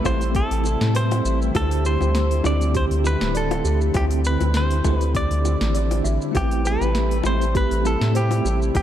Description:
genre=sunset chillout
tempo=100 BPM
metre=4/4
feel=swing 55% on 16ths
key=unclear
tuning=A4 = 441 Hz
part: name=direct-recorded clean electric guitar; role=melody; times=0.0-8.8 s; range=G4 to D5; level=-26 LUFS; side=equal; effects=vibrato effect, ping-pong delay
part: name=bell-like tine electric piano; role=accompaniment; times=0.0-8.8 s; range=D3 to B5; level=-27 LUFS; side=equal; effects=fast stereo tremolo, auto-pan, digital delay
part: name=lush unison pad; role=sustained chords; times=0.0-8.8 s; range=C3 to E4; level=-30 LUFS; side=equal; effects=chorus
part: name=round analog bass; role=bass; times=0.0-8.8 s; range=D1 to A2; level=-21 LUFS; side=equal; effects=none
part: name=electronic kick drum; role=drums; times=0.0-8.8 s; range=none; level=-24 LUFS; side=equal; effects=overdrive
part: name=buzzing kalimba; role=arpeggios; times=0.1-8.6 s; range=G4 to E5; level=-32 LUFS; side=right 6 dB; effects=digital delay
part: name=smooth R&B drum kit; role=drums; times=0.1-8.8 s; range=hi-hat, shaker, snare drum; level=-31 LUFS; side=equal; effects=overdrive
part: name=bongos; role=percussion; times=0.1-8.8 s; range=none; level=-32 LUFS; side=left 7 dB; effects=none
room=light reverb, digital ambience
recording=dark, warm production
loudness=-18 LUFS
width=side -11 dB against mid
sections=0.0-8.8 A section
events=none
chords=0.0 Am9; 1.5 D9sus4; 6.3 Am9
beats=0.35 0.95 | 1.55 2.15 2.75 3.35 | 3.95 4.55 5.15 5.75 | 6.35 6.95 7.55 8.15 | 8.75

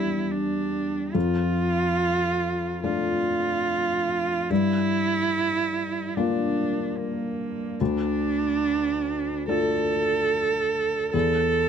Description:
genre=neoclassical piano and strings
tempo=72 BPM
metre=4/4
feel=rubato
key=D minor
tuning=A4 = 440 Hz
part: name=dark cello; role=second line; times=0.0-11.7 s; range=Bb3 to A4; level=-25 LUFS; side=right 5 dB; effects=none
part: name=felt-muted upright piano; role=accompaniment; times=0.0-11.7 s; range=D2 to G4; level=-26 LUFS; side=left 4 dB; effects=none
room=light reverb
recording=close, detailed microphones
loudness=-22 LUFS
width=side -7 dB against mid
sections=0.0-11.7 A section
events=none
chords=0.0 Em7; 1.1 Dm/F; 4.5 Gm7; 7.8 Dm; 11.1 N.C.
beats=0.32 | 1.15 1.99 2.83 3.67 | 4.50 5.33 6.16 6.98 | 7.80 8.62 9.48 10.32 | 11.14

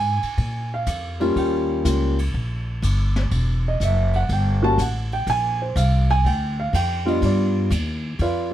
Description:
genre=jazz piano trio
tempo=123 BPM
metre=4/4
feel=swing 68% on 8ths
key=Bb mixolydian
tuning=A4 = 437 Hz
part: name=dark concert grand piano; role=melody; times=0.0-8.5 s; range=G3 to A5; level=-22 LUFS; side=right 1 dB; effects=none
part: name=upright bass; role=bass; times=0.0-8.5 s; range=E1 to Bb2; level=-21 LUFS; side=equal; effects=none
part: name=jazz brush drum kit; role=drums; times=0.2-8.3 s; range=hi-hat, kick drum, ride cymbal, snare drum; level=-32 LUFS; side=left 1 dB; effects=none
room=little or no reverb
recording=close, detailed microphones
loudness=-19 LUFS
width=side -12 dB against mid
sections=0.0-8.5 A section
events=grand piano solo 0.0-8.5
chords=0.4 Bb5; 1.4 Eb7; 3.3 Em; 5.3 Bb; 7.2 G7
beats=0.39 0.88 | 1.37 1.86 2.34 2.83 | 3.32 3.81 4.29 4.78 | 5.27 5.76 6.25 6.73 | 7.22 7.71 8.20

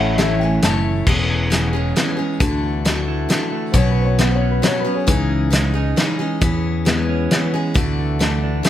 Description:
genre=folk rock and heartland rock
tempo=135 BPM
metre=3/4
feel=straight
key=E major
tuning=A4 = 439 Hz
part: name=warm upright piano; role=second line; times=0.0-1.0, 3.7-6.2 s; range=G#4 to A5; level=-24 LUFS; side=left 5 dB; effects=none
part: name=picked steel-string acoustic guitar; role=accompaniment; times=0.0-8.7 s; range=B2 to C#5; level=-23 LUFS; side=left 4 dB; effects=none
part: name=clean electric guitar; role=riff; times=0.0-8.7 s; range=E2 to E4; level=-25 LUFS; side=right 8 dB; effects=none
part: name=fingered electric bass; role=bass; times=0.0-8.6 s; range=E1 to E2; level=-20 LUFS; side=equal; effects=none
part: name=loose indie drum kit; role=drums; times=0.2-8.7 s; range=crash cymbal, hi-hat, kick drum, snare drum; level=-20 LUFS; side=equal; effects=none
room=light reverb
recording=none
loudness=-16 LUFS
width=side -11 dB against mid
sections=0.0-1.1 A section; 1.1-8.7 B section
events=none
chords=0.0 A; 1.1 E6; 2.4 Dadd9; 3.7 Bsus2; 5.1 C#madd9; 6.4 E6; 7.8 Dadd9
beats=0.18 0.63 | 1.07 1.52 1.96 | 2.41 2.85 3.30 | 3.75 4.19 4.64 | 5.08 5.53 5.97 | 6.42 6.86 7.31 | 7.75 8.20 8.64

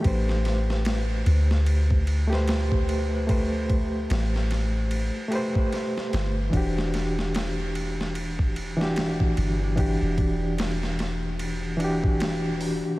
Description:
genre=trip hop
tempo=74 BPM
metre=4/4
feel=swing 59% on 16ths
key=E minor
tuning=A4 = 439 Hz
part: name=overdriven reed electric piano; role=accompaniment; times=0.0-13.0 s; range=E3 to C5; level=-27 LUFS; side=equal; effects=fast tremolo, tape echo
part: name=soft 808-style bass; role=bass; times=0.0-12.8 s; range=E1 to D2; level=-26 LUFS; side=equal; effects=none
part: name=dusty soul sampler-style drum kit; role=drums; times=0.0-12.8 s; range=hi-hat, kick drum, ride cymbal, snare drum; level=-29 LUFS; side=equal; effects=overdrive
room=light reverb, digital ambience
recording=vinyl crackle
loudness=-22 LUFS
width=side -19 dB against mid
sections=0.0-13.0 A section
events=none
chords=0.0 Am9; 6.5 Em9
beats=| 0.04 0.85 1.66 2.47 | 3.28 4.09 4.91 5.72 | 6.53 7.34 8.15 8.96 | 9.77 10.58 11.39 12.20

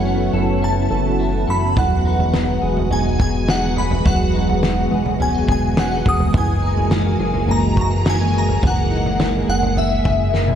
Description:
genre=dream pop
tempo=105 BPM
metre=4/4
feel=straight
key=E major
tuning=A4 = 440 Hz
part: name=shimmering bell with halo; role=melody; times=0.0-10.6 s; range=E5 to D#6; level=-23 LUFS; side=left 1 dB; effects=ensemble chorus, phaser, ping-pong delay
part: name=string machine, full ensemble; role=sustained chords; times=0.0-10.6 s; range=E3 to G#4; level=-22 LUFS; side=equal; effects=ensemble chorus
part: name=clean electric guitar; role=arpeggios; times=0.0-10.6 s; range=E3 to A4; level=-25 LUFS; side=equal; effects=ensemble chorus, ping-pong delay
part: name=chorused synth bass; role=bass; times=0.0-10.6 s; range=E1 to F#1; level=-21 LUFS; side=equal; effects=none
part: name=loose indie drum kit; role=drums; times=1.8-10.6 s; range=kick drum, snare drum, toms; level=-21 LUFS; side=equal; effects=none
room=moderate lush hall reverb, RT60 1.8 s, studio reverb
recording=dreamy mix soaked in reverb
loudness=-15 LUFS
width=side -9 dB against mid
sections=0.0-10.6 A section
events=drum fill 10.3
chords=0.0 B9sus4/F#; 1.8 Emaj9; 6.3 F#13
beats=0.06 0.63 1.20 | 1.77 2.34 2.91 3.48 | 4.06 4.63 5.20 5.77 | 6.34 6.91 7.49 8.06 | 8.63 9.20 9.77 10.34

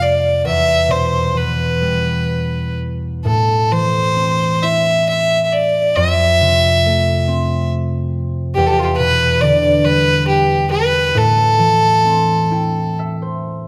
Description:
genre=celtic folk, Celtic slow air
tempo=61-72 BPM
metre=3/4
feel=rubato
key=A minor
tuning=A4 = 442 Hz
part: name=rich fiddle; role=melody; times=0.0-13.0 s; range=F4 to E5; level=-17 LUFS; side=equal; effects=none
part: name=concert harp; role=accompaniment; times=0.0-13.7 s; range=E2 to G5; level=-20 LUFS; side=equal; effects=none
room=moderate recital hall reverb, RT60 1.7 s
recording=none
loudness=-15 LUFS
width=mono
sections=0.0-13.7 A section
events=harp fill 12.0-13.7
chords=0.4 Em; 3.2 Am; 6.0 Fmaj7; 8.6 Em7; 11.2 Am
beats=| 0.44 1.35 2.29 | 3.24 4.17 5.08 | 5.96 6.83 7.71 | 8.56 9.41 10.28 | 11.15 12.04 12.98

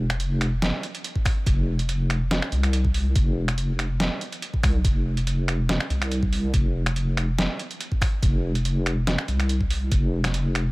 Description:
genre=deep dubstep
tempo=142 BPM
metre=4/4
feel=swing 53% on 16ths, half-time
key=unclear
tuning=A4 = 439 Hz
part: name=deep soft wobble bass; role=bass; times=0.0-10.7 s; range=F1 to C2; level=-23 LUFS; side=equal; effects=chorus
part: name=trip hop sampler-style drum kit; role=drums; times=0.1-10.6 s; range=finger snaps, hi-hat, snare drum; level=-28 LUFS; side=right 1 dB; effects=overdrive
part: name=electronic kick drum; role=drums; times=1.2-10.0 s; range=none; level=-22 LUFS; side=equal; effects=none
room=little or no reverb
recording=none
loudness=-21 LUFS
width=side -23 dB against mid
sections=0.0-10.7 A section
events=none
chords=none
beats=0.20 0.62 1.04 | 1.47 1.89 2.31 2.73 | 3.15 3.58 4.00 4.42 | 4.84 5.27 5.69 6.11 | 6.54 6.96 7.38 7.80 | 8.22 8.65 9.07 9.49 | 9.92 10.34

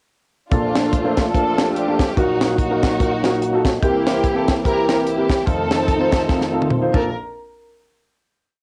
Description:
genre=uptempo gospel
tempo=146 BPM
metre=4/4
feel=swing 58% on 8ths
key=Bb major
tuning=A4 = 440 Hz
part: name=warm studio string section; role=melody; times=0.5-7.1 s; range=A3 to Bb4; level=-24 LUFS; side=equal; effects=cassette tape
part: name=warm grand piano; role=accompaniment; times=0.5-7.1 s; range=F1 to Bb5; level=-24 LUFS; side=equal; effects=cassette tape
part: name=percussive tonewheel organ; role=sustained chords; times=0.5-7.1 s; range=Bb2 to A4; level=-26 LUFS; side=equal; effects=slow rotary speaker, overdrive, chorus vibrato, cassette tape
part: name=tight funk drum kit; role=drums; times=0.5-7.0 s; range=crash cymbal, hi-hat, kick drum, snare drum, toms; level=-23 LUFS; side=equal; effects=none
room=light reverb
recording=home recording on cassette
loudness=-19 LUFS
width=mono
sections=0.5-7.1 breakdown; 7.1-8.6 final hit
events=grand piano fill 3.0-3.8; drum fill 6.3-7.1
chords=0.5 Bbmaj7; 2.2 Ebmadd9/Bb; 3.8 C7; 5.5 F7; 6.9 Bbmaj7; 7.1 N.C.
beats=| 0.52 0.93 1.35 1.76 | 2.17 2.59 3.00 3.41 | 3.83 4.24 4.65 5.06 | 5.47 5.88 6.29 6.70

